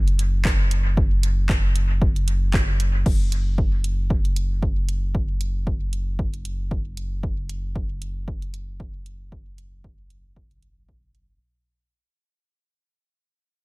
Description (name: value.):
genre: dub techno.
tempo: 115 BPM.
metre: 4/4.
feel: swing 56% on 16ths.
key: unclear.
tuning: A4 = 440 Hz.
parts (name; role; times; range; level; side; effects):
warm sub bass; bass; 0.0-11.4 s; F#1; -24 LUFS; equal; tube saturation, sidechain pumping.
punchy analog drum machine; drums; 0.1-11.3 s; crash cymbal, handclaps, hi-hat; -30 LUFS; equal; dub echo.
electronic kick drum; drums; 0.5-11.0 s; none; -23 LUFS; equal; overdrive.
room: little or no reverb.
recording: faint mains hum.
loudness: -20 LUFS.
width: side -24 dB against mid.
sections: 0.0-3.1 A section; 3.1-11.4 B section.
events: fade-out 3.1-11.4.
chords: none.